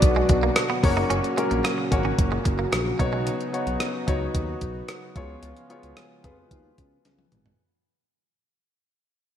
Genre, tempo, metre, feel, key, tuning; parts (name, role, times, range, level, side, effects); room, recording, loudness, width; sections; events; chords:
1980s-style pop; 111 BPM; 4/4; straight; A4 = 440 Hz
warm grand piano; accompaniment; 0.0-7.6 s; A#3 to D5; -27 LUFS; left 2 dB
brassy analog pad; sustained chords; 0.0-7.6 s; A#2 to F#4; -31 LUFS; right 1 dB; chorus, tremolo
smooth synth bass; bass; 0.0-7.5 s; F#1 to E#2; -28 LUFS; equal
clean 12-bit digital drum machine; drums; 0.0-7.6 s; hi-hat, kick drum, rim click, snare drum, toms; -24 LUFS; equal; gated reverb
direct-recorded clean electric guitar; riff; 0.2-3.2 s; G#3 to D#4; -31 LUFS; right 5 dB; wide subtle chorus, ping-pong delay
wet lush hall reverb, RT60 2.0 s; bright 1980s-style digital production; -21 LUFS; side -10 dB against mid
0.0-7.6 A section
fade-out 0.0-7.6; drum fill 7.0-7.6
0.0 Bm; 0.8 F#; 3.0 Badd9; 5.2 C#7